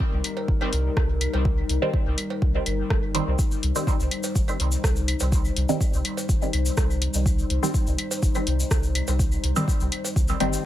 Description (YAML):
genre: dub techno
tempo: 124 BPM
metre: 4/4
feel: straight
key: C minor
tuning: A4 = 439 Hz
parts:
  - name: dark analog pad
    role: sustained chords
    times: 0.0-10.7 s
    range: G3 to C5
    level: -31 LUFS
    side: left 4 dB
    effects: lush chorus, sidechain pumping
  - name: electronic kick drum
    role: drums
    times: 0.0-10.3 s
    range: none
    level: -23 LUFS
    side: equal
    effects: overdrive
  - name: soft dub sub bass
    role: bass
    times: 0.1-10.6 s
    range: G1 to C2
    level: -25 LUFS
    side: equal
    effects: sidechain pumping
  - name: deep house drum kit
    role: drums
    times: 0.2-10.5 s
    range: hi-hat, rim click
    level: -29 LUFS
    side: left 1 dB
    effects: overdrive
  - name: claves and cowbell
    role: percussion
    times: 0.2-10.5 s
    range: none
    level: -37 LUFS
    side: right 5 dB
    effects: overdrive, sidechain pumping on perc, dub echo
  - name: filtered dub chord stab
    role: stabs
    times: 1.8-10.7 s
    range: Eb3 to C4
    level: -28 LUFS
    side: right 1 dB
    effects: phaser, cassette tape, dub echo
  - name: tube shaker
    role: percussion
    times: 3.4-10.6 s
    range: none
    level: -33 LUFS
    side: left 2 dB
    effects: none
room: digital ambience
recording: none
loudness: -21 LUFS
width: side -13 dB against mid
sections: 0.0-10.7 A section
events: none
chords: 0.0 Cm